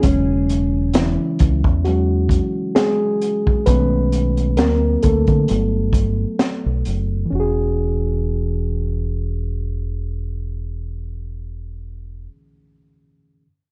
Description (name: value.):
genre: R&B, neo-soul.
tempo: 66 BPM.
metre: 4/4.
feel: swing 55% on 16ths.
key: E major.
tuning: A4 = 441 Hz.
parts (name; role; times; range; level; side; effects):
mellow reed electric piano; accompaniment; 0.0-13.5 s; C#3 to B4; -23 LUFS; equal; none.
deep dub fingered electric bass; bass; 0.0-12.3 s; E1 to D3; -23 LUFS; equal; none.
crunchy breakbeat drum kit; drums; 0.0-7.1 s; hi-hat, kick drum, snare drum; -21 LUFS; equal; none.
room: light reverb.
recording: worn, warbling old tape, cassette tape, warbly pitch drift, nothing above 10.5 kHz.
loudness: -19 LUFS.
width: mono.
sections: 0.0-7.3 A section; 7.3-10.9 B section.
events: reed electric piano solo 0.0-7.3.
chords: 0.0 E69; 3.7 B13; 4.6 D7b13; 5.5 Gmaj9; 7.3 E69.